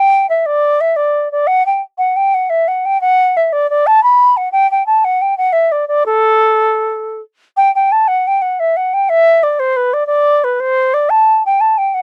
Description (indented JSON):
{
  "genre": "celtic folk",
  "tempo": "118 BPM (dotted quarters)",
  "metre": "9/8",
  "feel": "straight",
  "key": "A dorian",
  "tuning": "A4 = 440 Hz",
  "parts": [
    { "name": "baroque flute", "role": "solo", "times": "0.0-12.0 s", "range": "A4 to B5", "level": "-13 LUFS", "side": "equal", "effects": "none" }
  ],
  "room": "light reverb",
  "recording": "dry, close 1970s-style studio recording",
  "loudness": "-13 LUFS",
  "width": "mono",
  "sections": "0.0-7.6 A section; 7.6-12.0 A section",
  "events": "none",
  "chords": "none"
}